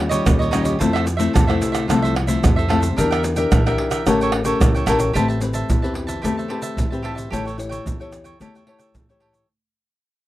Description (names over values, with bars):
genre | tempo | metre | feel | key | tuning
samba and choro | 111 BPM | 4/4 | straight | A minor from 5.1 s | A4 = 440 Hz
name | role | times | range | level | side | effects
nylon-string guitar | accompaniment | 0.0-9.5 s | Bb2 to C#5 | -22 LUFS | left 3 dB | none
upright bass | bass | 0.0-9.4 s | A1 to A2 | -24 LUFS | equal | none
cavaquinho | accompaniment | 0.1-9.5 s | D4 to A5 | -25 LUFS | right 3 dB | none
egg shaker, pandeiro, surdo and tamborim | percussion | 0.1-9.5 s | none | -21 LUFS | right 1 dB | none
room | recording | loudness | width
light reverb | dry, close 1970s-style studio recording | -17 LUFS | side -15 dB against mid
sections
0.0-5.1 A section; 5.1-9.5 B section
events
fade-out 5.1-9.5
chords
0.0 Eb9; 0.8 Fmaj7; 3.0 Em7b5; 4.1 A7b9; 5.1 Am9; 7.3 A7